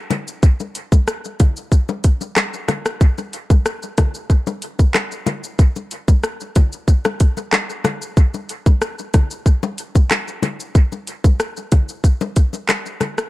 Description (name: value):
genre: dancehall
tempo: 93 BPM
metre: 4/4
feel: straight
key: none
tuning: none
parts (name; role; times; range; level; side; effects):
- island pop drum kit; drums; 0.1-13.3 s; handclaps, hi-hat, kick drum, rim click, shaker; -15 LUFS; equal; vintage 12-bit sampler grit
- bongos; percussion; 0.1-13.2 s; none; -25 LUFS; left 5 dB; dub echo
room: digital ambience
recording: echo-heavy mix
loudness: -16 LUFS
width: side -18 dB against mid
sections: 0.0-13.3 A section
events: none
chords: none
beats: | 0.43 1.07 1.72 2.36 | 3.01 3.65 4.30 4.95 | 5.59 6.24 6.88 7.53 | 8.17 8.82 9.46 10.11 | 10.75 11.40 12.04 12.69